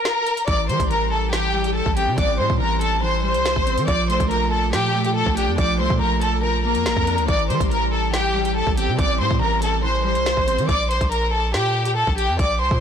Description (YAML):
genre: hip hop, drill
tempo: 141 BPM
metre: 4/4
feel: half-time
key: A phrygian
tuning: A4 = 439 Hz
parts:
  - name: warm studio violin section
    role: melody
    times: 0.0-12.8 s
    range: G4 to D6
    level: -21 LUFS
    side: left 1 dB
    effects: low-pass filter, ping-pong delay
  - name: drill drum kit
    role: drums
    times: 0.1-12.8 s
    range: hi-hat, kick drum, snare drum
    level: -24 LUFS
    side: equal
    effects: none
  - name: mellow electric guitar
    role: accompaniment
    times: 0.5-10.7 s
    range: E3 to D4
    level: -26 LUFS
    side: right 1 dB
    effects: low-pass filter
  - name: long sustained 808-style bass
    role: bass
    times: 0.5-12.8 s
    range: A1 to E3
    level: -24 LUFS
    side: equal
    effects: none
room: light reverb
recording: blown-out, overdriven recording, overdrive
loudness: -18 LUFS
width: side -8 dB against mid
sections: 0.0-12.8 A section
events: break 0.0-0.5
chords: 0.5 Am7; 3.9 Bbmaj7; 7.3 Am7; 10.7 Bbmaj7